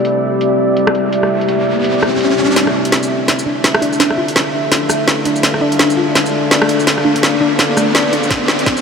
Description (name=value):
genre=half-time drum and bass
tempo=167 BPM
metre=4/4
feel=swing 59% on 16ths, half-time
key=D minor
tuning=A4 = 439 Hz
part: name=deep dark ambient pad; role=sustained chords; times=0.0-8.8 s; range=C4 to F5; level=-16 LUFS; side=left 1 dB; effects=chorus, built-in reverb, sidechain pumping
part: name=drum and bass drum kit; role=drums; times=0.0-8.8 s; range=hi-hat, rim click, shaker, snare drum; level=-15 LUFS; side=equal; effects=overdrive, low-pass filter on hats, low-pass filter on snare, low-pass filter on perc
part: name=riser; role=sound effects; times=0.8-8.8 s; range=none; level=-22 LUFS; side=equal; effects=none
part: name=metallic inharmonic drone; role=texture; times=0.0-2.6 s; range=A3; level=-27 LUFS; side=left 1 dB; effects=chorus, built-in reverb
part: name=warbly dusty pluck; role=arpeggios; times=3.5-8.3 s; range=A3 to D5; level=-19 LUFS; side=equal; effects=chorus, phaser, ping-pong delay
part: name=electronic kick drum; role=drums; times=8.3-8.8 s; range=none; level=-23 LUFS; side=equal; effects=none
room=wet huge ambient reverb, RT60 8.6 s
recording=dreamy mix soaked in reverb, high-pass filter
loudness=-12 LUFS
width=side -6 dB against mid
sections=0.0-2.6 A section; 2.6-8.8 B section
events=riser 0.8-2.6, 2.6-8.8; build-up 2.6-8.8; drum fill 2.6-8.8; filter sweep on synth pluck 2.6-8.8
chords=0.0 C; 2.6 Dm; 8.3 C